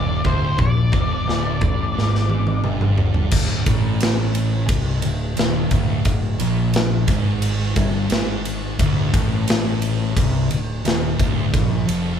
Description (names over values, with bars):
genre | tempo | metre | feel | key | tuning
stoner and doom metal | 88 BPM | 4/4 | straight | unclear | A4 = 440 Hz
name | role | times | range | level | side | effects
octave-fuzz lead guitar | melody | 0.0-2.6 s | C5 to D5 | -26 LUFS | left 3 dB | distortion
thick fuzz guitar | riff | 0.0-12.2 s | D2 to C3 | -26 LUFS | left 7 dB | distortion
thick fuzz guitar | riff | 0.0-12.2 s | D2 to C3 | -24 LUFS | right 4 dB | distortion
growling fingered electric bass | bass | 0.0-12.2 s | D1 to C2 | -24 LUFS | equal | overdrive
big rock drum kit | drums | 0.2-12.0 s | crash cymbal, kick drum, ride cymbal, snare drum, toms | -21 LUFS | equal | none
room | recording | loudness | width
light reverb | band playing live in one room | -17 LUFS | side -8 dB against mid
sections
0.0-3.3 A section; 3.3-12.2 B section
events
drum fill 2.0-3.3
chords
0.0 Dm; 3.3 D5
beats
| 0.59 1.28 1.96 2.64 | 3.33 4.01 4.69 5.38 | 6.06 6.74 7.43 8.11 | 8.79 9.48 10.16 10.85 | 11.53